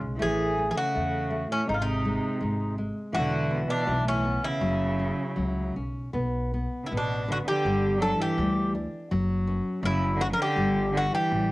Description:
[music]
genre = fado-style ballad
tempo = 81 BPM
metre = 2/4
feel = rubato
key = F# minor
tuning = A4 = 440 Hz
[part]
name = nylon-string guitar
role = accompaniment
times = 0.0-11.5 s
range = E3 to D4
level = -30 LUFS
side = left 1 dB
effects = none
[part]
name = upright bass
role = bass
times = 0.0-11.5 s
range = E1 to E2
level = -31 LUFS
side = equal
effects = transformer saturation
[part]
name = Greek bouzouki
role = melody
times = 0.2-11.5 s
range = C#4 to A#4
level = -28 LUFS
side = equal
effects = cassette tape
[part]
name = rich cello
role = second line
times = 0.2-11.5 s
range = A2 to F#3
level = -30 LUFS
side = right 2 dB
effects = none
[sound]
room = light reverb, small room reverb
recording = home recording on cassette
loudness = -24 LUFS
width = side -19 dB against mid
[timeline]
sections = 0.0-6.1 A section; 6.1-11.5 B section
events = none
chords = 0.2 A; 1.7 G#; 3.1 E5; 4.6 F#5; 6.1 Asus4; 7.7 G5; 9.1 F#5; 10.6 G5

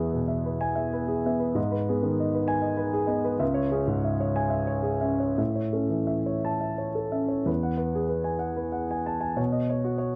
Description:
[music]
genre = neoclassical minimalist piano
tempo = 56-66 BPM (dotted quarters)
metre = 6/8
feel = rubato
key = E major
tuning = A4 = 439 Hz
[part]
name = warm grand piano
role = solo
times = 0.0-10.2 s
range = C#2 to A5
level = -27 LUFS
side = equal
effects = none
[sound]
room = little or no reverb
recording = dry, close 1970s-style studio recording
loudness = -27 LUFS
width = mono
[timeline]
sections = 0.0-7.5 A section; 7.5-10.2 B section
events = none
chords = 0.0 E; 1.6 G#m; 3.4 C#m; 5.4 A; 7.5 Eadd9; 9.4 Badd9

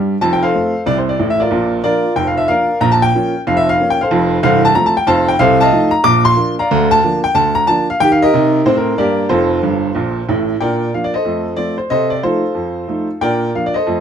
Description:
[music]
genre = jazz, stride piano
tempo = 185 BPM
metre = 4/4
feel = swing 65% on 8ths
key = F major, Bb major from 5.4 s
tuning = A4 = 440 Hz
[part]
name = warm upright piano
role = solo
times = 0.0-14.0 s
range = C1 to D6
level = -12 LUFS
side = equal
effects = none
[sound]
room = wet club reverb, RT60 0.5 s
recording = none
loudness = -12 LUFS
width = side -8 dB against mid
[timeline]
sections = 0.2-10.6 A section; 10.6-14.0 B section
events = upright piano fill 0.0, 9.6-10.6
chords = 0.2 F; 1.5 Bb; 2.8 Bbm; 4.1 F; 5.4 F7/C; 6.1 Bb; 6.7 Bb/D; 8.0 Ebmaj7; 9.3 F; 10.6 Bb; 11.3 F7; 13.2 Bb

